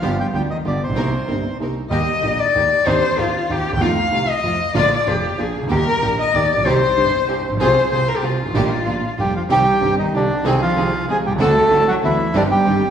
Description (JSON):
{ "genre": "tango", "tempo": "190 BPM", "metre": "3/4", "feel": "rubato", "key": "Eb major, C minor from 9.5 s", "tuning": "A4 = 440 Hz", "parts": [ { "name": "bandoneon", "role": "melody", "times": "0.0-1.6, 9.2-12.9 s", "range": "C4 to G5", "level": "-18 LUFS", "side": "right 2 dB", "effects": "none" }, { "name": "warm cello", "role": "second line", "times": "0.0-12.9 s", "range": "C3 to G5", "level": "-19 LUFS", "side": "left 3 dB", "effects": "none" }, { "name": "warm concert grand piano", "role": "accompaniment", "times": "0.0-12.8 s", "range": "F1 to Ab4", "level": "-21 LUFS", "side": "right 2 dB", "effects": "none" }, { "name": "rich chamber string section", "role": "stabs", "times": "0.0-12.8 s", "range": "Eb3 to Bb4", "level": "-26 LUFS", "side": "right 2 dB", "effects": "none" } ], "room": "wet recital hall reverb, RT60 1.6 s", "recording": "recorded in a church or concert hall", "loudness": "-15 LUFS", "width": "side -8 dB against mid", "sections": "0.0-1.9 A section; 1.9-9.5 B section; 9.5-12.9 A section", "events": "cello solo 1.9-9.5", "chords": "0.0 G7; 1.0 Cm7; 1.9 Eb; 2.9 Cmadd9/Eb; 3.8 F7; 4.8 Bb; 5.7 Eb; 6.7 Cm; 7.6 Fm/C; 8.5 Eb/Bb; 8.9 Bb; 9.5 Cm; 10.5 Ab/C; 11.4 D7; 12.3 Cm/G" }